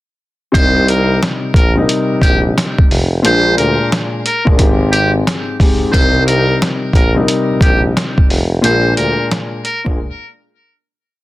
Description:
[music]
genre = hip hop, boom-bap hip-hop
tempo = 89 BPM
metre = 4/4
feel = swing 63% on 16ths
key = C minor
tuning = A4 = 439 Hz
[part]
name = trumpet with metal mute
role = melody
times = 0.5-9.8 s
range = G4 to C5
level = -17 LUFS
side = equal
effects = high-pass filter, low-pass filter, plate reverb, digital delay
[part]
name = dark grand piano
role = accompaniment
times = 0.5-10.0 s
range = Ab2 to Bb4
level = -17 LUFS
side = left 2 dB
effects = cassette tape, high-pass filter, low-pass filter, plate reverb
[part]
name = clear tuba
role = bass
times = 0.5-10.0 s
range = F1 to D2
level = -16 LUFS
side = equal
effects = none
[part]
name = trip hop sampler-style drum kit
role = drums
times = 0.5-10.0 s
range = hi-hat, kick drum, snare drum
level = -14 LUFS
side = equal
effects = none
[sound]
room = light reverb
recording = dense, heavily limited modern master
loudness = -11 LUFS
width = side -17 dB against mid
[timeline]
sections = 0.5-11.2 hook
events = fade-out 8.6-11.2; break 10.0-11.2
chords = 0.5 Cm7; 3.2 Bb7; 4.6 Abmaj7; 5.9 Cm7; 8.6 Bb7; 10.0 N.C.

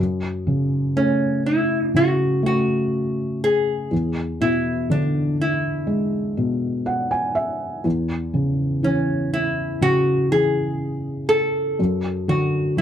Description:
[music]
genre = pop ballad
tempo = 61 BPM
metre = 4/4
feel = straight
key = F# minor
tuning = A4 = 440 Hz
[part]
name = felt-muted upright piano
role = accompaniment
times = 0.0-12.8 s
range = E2 to G#5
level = -21 LUFS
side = equal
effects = none
[part]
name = nylon-string guitar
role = melody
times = 1.0-12.8 s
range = C#4 to A4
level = -21 LUFS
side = equal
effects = slapback echo
[sound]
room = light reverb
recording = dry, close 1970s-style studio recording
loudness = -19 LUFS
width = side -9 dB against mid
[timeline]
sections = 0.0-12.8 A section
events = felt piano fill 6.4-7.9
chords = 0.0 F#m; 3.9 E7; 7.9 E6; 11.8 D/F#

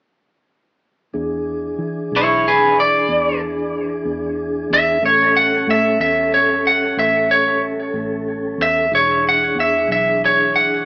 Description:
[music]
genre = slow blues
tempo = 62 BPM (dotted quarters)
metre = 12/8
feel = straight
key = E mixolydian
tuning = A4 = 440 Hz
[part]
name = mellow tonewheel organ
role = sustained chords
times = 1.1-10.9 s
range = E3 to A4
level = -22 LUFS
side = equal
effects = slow rotary speaker
[part]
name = vintage muted fingered electric bass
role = bass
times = 1.1-10.8 s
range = E1 to E3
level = -28 LUFS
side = equal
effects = none
[part]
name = lightly driven lead guitar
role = melody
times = 2.2-10.9 s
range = E4 to F#5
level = -14 LUFS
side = equal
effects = analog delay
[sound]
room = moderate studio reverb, RT60 0.7 s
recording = band playing live in one room, AM radio sound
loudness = -14 LUFS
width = side -29 dB against mid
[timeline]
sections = 1.1-10.9 A section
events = none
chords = 1.1 E7; 5.0 A7; 8.9 E7

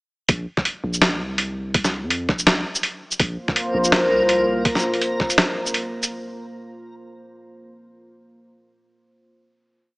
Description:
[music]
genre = half-time drum and bass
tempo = 165 BPM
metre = 4/4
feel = swing 56% on 16ths, half-time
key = unclear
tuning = A4 = 440 Hz
[part]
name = long sustained 808-style bass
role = bass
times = 0.3-4.6 s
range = Bb1 to F2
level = -28 LUFS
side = equal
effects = tube saturation
[part]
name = boom bap sampler-style drum kit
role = drums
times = 0.3-6.1 s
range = hi-hat, shaker, snare drum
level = -19 LUFS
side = equal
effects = none
[part]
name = electronic kick drum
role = drums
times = 0.3-5.3 s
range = none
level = -24 LUFS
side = equal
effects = none
[part]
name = deep dark ambient pad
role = sustained chords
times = 3.5-4.6 s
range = Bb3 to C5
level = -23 LUFS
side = equal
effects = chorus, built-in reverb, vintage 12-bit sampler grit, sidechain pumping
[sound]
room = moderate lush hall reverb, RT60 2.0 s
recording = small speaker sound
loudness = -18 LUFS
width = side -26 dB against mid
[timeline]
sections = 0.3-6.1 drop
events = drop 0.3-6.1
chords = 0.3 Bb5

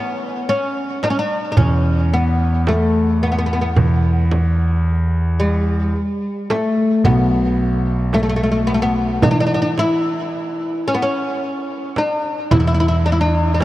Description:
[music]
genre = Arabic maqam ensemble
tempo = 110 BPM (eighths)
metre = 10/8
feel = straight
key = E maqam rast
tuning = A4 = 440 Hz
[part]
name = oud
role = melody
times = 0.0-13.6 s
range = G#3-50c to E4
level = -18 LUFS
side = left 1 dB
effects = diffuse ambient delay
[part]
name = warm concert grand piano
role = bass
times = 0.0-13.6 s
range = B1 to E3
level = -18 LUFS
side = equal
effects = none
[part]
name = darbuka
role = percussion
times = 0.5-13.6 s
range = none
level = -21 LUFS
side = right 2 dB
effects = none
[part]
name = frame drum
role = percussion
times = 1.0-13.6 s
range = none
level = -21 LUFS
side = right 2 dB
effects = none
[sound]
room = light reverb, studio ambience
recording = cassette tape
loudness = -15 LUFS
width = side -15 dB against mid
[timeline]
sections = 0.0-13.6 A section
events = none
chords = none

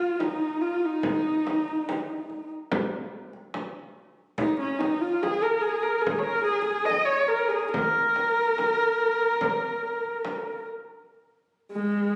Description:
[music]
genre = mongolian traditional, Mongolian folk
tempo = 72 BPM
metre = 4/4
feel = straight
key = Bb yu mode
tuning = A4 = 440 Hz
[part]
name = dark horsehead fiddle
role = melody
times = 0.0-12.2 s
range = Ab3 to Eb5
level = -26 LUFS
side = equal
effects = none
[part]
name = frame drum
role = percussion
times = 0.2-10.4 s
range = none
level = -35 LUFS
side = equal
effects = none
[sound]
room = wet scoring stage reverb, RT60 1.6 s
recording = recorded on a phone in the room, studio reverb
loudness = -26 LUFS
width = mono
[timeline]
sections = 0.0-11.1 A section; 11.1-12.2 B section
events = none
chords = none

